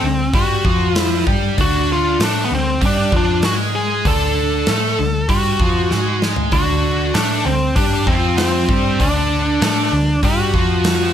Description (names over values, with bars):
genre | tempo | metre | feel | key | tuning
blues rock power trio and southern rock | 97 BPM | 4/4 | straight | unclear | A4 = 440 Hz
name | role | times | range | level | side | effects
bluesy overdriven lead guitar | melody | 0.0-11.1 s | B3 to A4 | -20 LUFS | equal | distortion, slapback echo
biting overdriven guitar | riff | 0.0-11.1 s | D3 to A4 | -20 LUFS | equal | none
vintage muted picked electric bass | bass | 0.0-11.1 s | D2 to A2 | -20 LUFS | equal | none
big rock drum kit | drums | 0.3-11.0 s | hi-hat, kick drum, snare drum, toms | -20 LUFS | equal | none
room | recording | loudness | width
light reverb | none | -14 LUFS | side -9 dB against mid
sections
0.0-11.1 A section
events
drum fill 5.9-6.5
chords
0.0 D